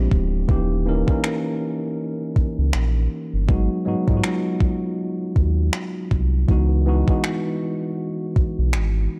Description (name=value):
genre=contemporary R&B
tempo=80 BPM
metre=4/4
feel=swing 58% on 16ths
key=C# minor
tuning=A4 = 437 Hz
part: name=tine electric piano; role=accompaniment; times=0.0-9.2 s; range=E3 to A#4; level=-26 LUFS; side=equal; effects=overdrive
part: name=sub bass with octave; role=bass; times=0.0-9.1 s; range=D1 to G#2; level=-22 LUFS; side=equal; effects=none
part: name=gated 80s digital drum machine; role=drums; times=0.1-8.9 s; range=finger snaps, kick drum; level=-23 LUFS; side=equal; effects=overdrive
room=little or no reverb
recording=dark, warm production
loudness=-22 LUFS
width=mono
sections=0.0-9.2 A section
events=break 0.0-6.5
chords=0.5 D#7b9; 3.5 G#m7; 6.5 C#m11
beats=| 0.49 1.24 1.99 2.74 | 3.49 4.24 4.99 5.74 | 6.49 7.24 7.99 8.74